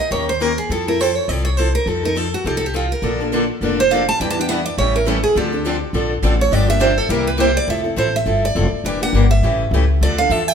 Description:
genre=acoustic string swing (jazz manouche)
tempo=206 BPM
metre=4/4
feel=swing 58% on 8ths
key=unclear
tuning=A4 = 444 Hz
part: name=picked steel-string acoustic guitar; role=melody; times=0.0-10.5 s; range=F4 to A5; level=-19 LUFS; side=right 4 dB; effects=none
part: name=picked steel-string acoustic guitar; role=accompaniment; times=0.1-10.4 s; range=C3 to Bb4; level=-22 LUFS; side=left 4 dB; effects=none
part: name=upright bass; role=bass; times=0.1-10.5 s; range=E1 to F2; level=-20 LUFS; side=left 1 dB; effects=none
part: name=picked steel-string acoustic guitar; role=accompaniment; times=3.0-7.5 s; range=C3 to B4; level=-25 LUFS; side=right 4 dB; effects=none
room=moderate large studio reverb, RT60 1.1 s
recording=band playing live in one room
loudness=-15 LUFS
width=side -7 dB against mid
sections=0.0-7.7 A section; 7.7-10.5 A section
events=steel-string acoustic guitar solo 0.0-10.5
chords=0.1 Eb7; 0.7 Fmaj7; 1.9 F7; 3.0 Bbmaj7; 4.2 Em7; 4.8 A7; 5.4 Dm7; 6.5 Gm7; 7.1 C7; 7.7 Fmaj9; 8.8 Em7b5; 9.4 A7; 10.0 Dm9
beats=0.11 0.40 | 0.69 0.99 1.28 1.57 | 1.86 2.15 2.44 2.74 | 3.03 3.32 3.61 3.90 | 4.19 4.48 4.78 5.07 | 5.36 5.65 5.94 6.23 | 6.52 6.81 7.10 7.39 | 7.68 7.97 8.27 8.56 | 8.85 9.14 9.43 9.72 | 10.02 10.31

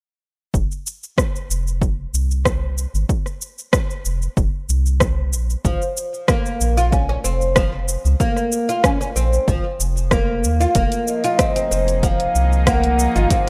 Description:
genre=organic downtempo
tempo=94 BPM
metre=4/4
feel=straight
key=unclear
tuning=A4 = 442 Hz
part: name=round analog bass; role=bass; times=0.5-13.3 s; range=F1 to Eb2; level=-22 LUFS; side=equal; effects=sidechain pumping
part: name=deep house drum kit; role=drums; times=0.5-13.4 s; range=hi-hat, rim click, shaker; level=-25 LUFS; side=equal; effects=overdrive
part: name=electronic kick drum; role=drums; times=0.5-13.4 s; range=none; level=-23 LUFS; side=equal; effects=overdrive
part: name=oud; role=arpeggios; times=5.6-13.5 s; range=F3 to F4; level=-24 LUFS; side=equal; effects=digital delay
part: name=rich chamber string section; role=sustained chords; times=10.8-13.5 s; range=F3 to Ab4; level=-31 LUFS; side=equal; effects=sidechain pumping
part: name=mellow bansuri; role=melody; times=11.1-13.5 s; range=Eb5 to Gb5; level=-25 LUFS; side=equal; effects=delay
part: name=udu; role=percussion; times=13.2-13.4 s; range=none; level=-31 LUFS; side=equal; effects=none
room=light reverb, studio reverb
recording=rough home demo mix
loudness=-19 LUFS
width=mono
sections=0.5-13.5 A section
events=none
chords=0.5 F5; 5.6 Bb5; 10.8 Fm7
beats=| 0.54 1.18 1.82 2.46 | 3.09 3.73 4.37 5.01 | 5.65 6.29 6.92 7.56 | 8.20 8.84 9.48 10.12 | 10.75 11.39 12.03 12.67 | 13.31

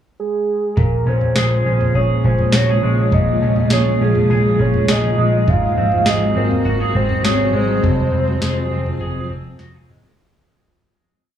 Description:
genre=dream pop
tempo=102 BPM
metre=4/4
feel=straight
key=Bb minor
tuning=A4 = 440 Hz
part: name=soft octave-layered synth lead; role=melody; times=0.2-9.6 s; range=Ab4 to F5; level=-20 LUFS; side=right 2 dB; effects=chorus, dub echo
part: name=granular cloud pad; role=sustained chords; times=1.5-10.2 s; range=Db3 to Gb4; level=-22 LUFS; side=left 1 dB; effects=built-in reverb
part: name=electric guitar through a small old amp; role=arpeggios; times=0.8-10.7 s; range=F2 to Ab4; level=-24 LUFS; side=equal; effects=wide subtle chorus, dub echo
part: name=vintage muted picked electric bass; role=bass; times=0.8-10.1 s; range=F1 to Bb1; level=-19 LUFS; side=equal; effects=none
part: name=booming analog drum machine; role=drums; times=0.8-10.2 s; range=kick drum, snare drum, toms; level=-21 LUFS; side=right 1 dB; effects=none
room=moderate spring reverb, RT60 2.4 s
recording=echo-heavy mix, small room ambience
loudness=-14 LUFS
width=side -10 dB against mid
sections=0.0-0.8 pickup bar; 0.8-10.2 verse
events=fade-out 7.8-10.2; drum fill 9.6-10.2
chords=0.0 N.C.; 0.8 Bbm7; 5.5 Ab7; 7.8 Fm7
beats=0.18 | 0.77 1.36 1.95 2.54 | 3.13 3.71 4.30 4.89 | 5.48 6.07 6.66 7.24 | 7.83 8.42 9.01 9.60

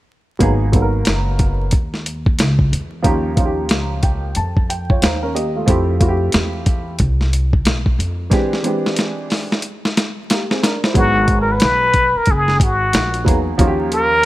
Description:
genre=hip hop, jazz-hop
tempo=91 BPM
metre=4/4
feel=swing 62% on 16ths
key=unclear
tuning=A4 = 440 Hz
part: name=warm upright piano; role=accompaniment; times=0.4-14.3 s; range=E3 to A5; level=-20 LUFS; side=right 1 dB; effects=none
part: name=upright bass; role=bass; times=0.4-14.2 s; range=F#1 to E#2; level=-20 LUFS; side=equal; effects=none
part: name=dusty soul sampler-style drum kit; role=drums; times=0.4-14.1 s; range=hi-hat, kick drum, snare drum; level=-17 LUFS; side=equal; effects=none
part: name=trumpet with plunger mute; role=melody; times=11.0-14.3 s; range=F#4 to B4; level=-15 LUFS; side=left 1 dB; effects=none
room=light reverb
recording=vinyl crackle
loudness=-14 LUFS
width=side -16 dB against mid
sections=0.4-11.0 A section; 11.0-14.3 B section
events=upright piano fill 3.7-5.7; break 8.3-11.0; drum fill 8.3-11.0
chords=0.4 G#m9; 3.0 D#9; 5.7 Fmaj7; 8.3 E7alt; 11.0 G#m9; 13.6 D#9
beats=| 0.40 1.06 1.72 2.38 | 3.04 3.70 4.36 5.02 | 5.68 6.34 7.00 7.66 | 8.32 8.98 9.63 10.29 | 10.95 11.61 12.27 12.93 | 13.59 14.25

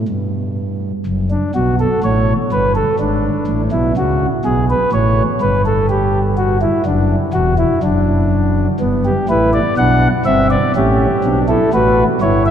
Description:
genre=classical, baroque-style 3-part fugue for pipe organ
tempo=62 BPM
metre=4/4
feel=straight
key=unclear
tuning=A4 = 440 Hz
part: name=chamber organ, principal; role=solo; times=0.0-12.5 s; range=E1 to F#5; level=-13 LUFS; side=equal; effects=none
room=wet cathedral reverb, RT60 5.7 s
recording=dark, warm production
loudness=-13 LUFS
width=side -9 dB against mid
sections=0.0-12.5 A section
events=none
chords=0.0 N.C.; 1.1 D/F# (rootless); 3.0 E7/G# (rootless); 4.9 A7; 6.9 D; 8.8 G; 10.8 A7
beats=0.08 | 1.06 2.03 2.99 3.96 | 4.92 5.89 6.85 7.82 | 8.80 9.78 10.76 11.74

